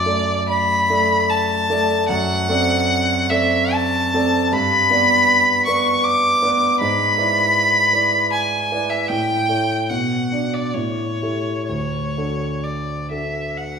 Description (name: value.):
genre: classical, romantic duo for violin and grand piano.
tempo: 62-81 BPM.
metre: 3/4.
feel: rubato.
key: D major.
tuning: A4 = 440 Hz.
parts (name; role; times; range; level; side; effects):
rich violin; melody; 0.0-13.8 s; C#5 to D6; -18 LUFS; left 1 dB; none.
warm concert grand piano; accompaniment; 0.0-13.8 s; D2 to D5; -21 LUFS; right 1 dB; none.
room: wet recital hall reverb, RT60 1.6 s.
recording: heard from further back in the room.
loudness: -16 LUFS.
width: side -6 dB against mid.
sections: 0.0-13.8 A section.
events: none.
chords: 0.0 D/F#; 2.1 D7/F#; 4.5 G; 6.8 E7/G#; 9.1 A; 9.9 Bm; 10.7 A7; 11.7 D.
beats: 0.48 1.28 | 2.07 2.87 3.73 | 4.51 5.27 6.04 | 6.80 7.56 8.32 | 9.10 9.89 10.74 | 11.68 12.63 13.56.